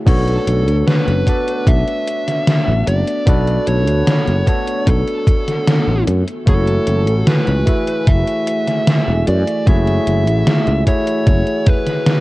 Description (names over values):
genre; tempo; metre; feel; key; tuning
vaporwave; 75 BPM; 4/4; straight; unclear; A4 = 440 Hz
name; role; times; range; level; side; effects
overdriven tine electric piano; accompaniment; 0.0-12.2 s; A3 to E5; -21 LUFS; equal; lush chorus
warbly tape-like pad; sustained chords; 0.0-12.2 s; E3 to G#5; -27 LUFS; left 1 dB; none
dark smooth lead guitar; melody; 0.1-12.2 s; A4 to E5; -21 LUFS; equal; overdrive, tape echo
sustaining fretless electric bass; bass; 0.1-11.4 s; E1 to F#2; -16 LUFS; equal; tube saturation
electronic kick drum; drums; 0.1-11.8 s; none; -14 LUFS; equal; overdrive
gated 80s digital drum machine; drums; 0.1-12.2 s; crash cymbal, hi-hat, snare drum; -17 LUFS; equal; gated reverb, gated reverb snare, overdrive
room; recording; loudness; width
little or no reverb; worn, warbling old tape, cassette tape, warbly pitch drift; -13 LUFS; side -19 dB against mid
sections
0.1-12.2 A section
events
none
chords
0.1 Bm9; 6.1 F#m9